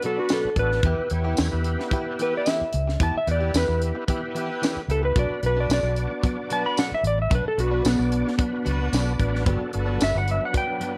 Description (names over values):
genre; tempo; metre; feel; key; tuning
straight-eighth soul blues; 111 BPM; 4/4; straight; B minor; A4 = 436 Hz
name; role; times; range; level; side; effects
clean lap steel guitar; melody; 0.0-11.0 s; B3 to B5; -28 LUFS; equal; none
overdriven tonewheel organ; accompaniment; 0.0-11.0 s; F#3 to F#5; -33 LUFS; equal; slow rotary speaker, chorus vibrato
warm chamber string section; sustained chords; 0.0-11.0 s; F#3 to B4; -39 LUFS; equal; none
direct-recorded clean electric guitar; stabs; 0.0-11.0 s; G2 to G4; -36 LUFS; equal; subtle chorus
tight funk drum kit; drums; 0.0-10.9 s; hi-hat, kick drum, snare drum, tambourine; -28 LUFS; equal; none
vintage muted fingered electric bass; bass; 0.4-10.4 s; G1 to E2; -27 LUFS; equal; none
room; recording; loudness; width
light reverb, small room ambience; none; -24 LUFS; mono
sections
0.0-11.0 A section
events
electric slide guitar solo 0.0-11.0; tonewheel organ fill 8.4-9.5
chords
0.0 Bm; 0.8 Em; 5.2 Bm; 9.5 Gmaj7